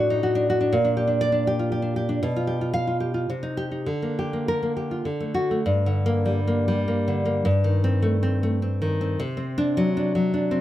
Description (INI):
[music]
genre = romantic piece for solo classical guitar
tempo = 96-121 BPM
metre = 3/4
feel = rubato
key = G minor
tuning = A4 = 441 Hz
[part]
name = nylon-string guitar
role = solo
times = 0.0-10.6 s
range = G2 to F5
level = -21 LUFS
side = equal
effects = none
[sound]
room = light reverb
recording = close, detailed microphones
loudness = -21 LUFS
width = side -13 dB against mid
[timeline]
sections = 0.0-5.6 A section; 5.6-10.6 B section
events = none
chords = 0.0 D/A; 0.7 Gm/Bb; 2.3 G7/B; 3.3 Cm; 3.9 Gm/D; 5.1 D; 5.6 Gm; 7.5 Adim/G; 9.2 D7/C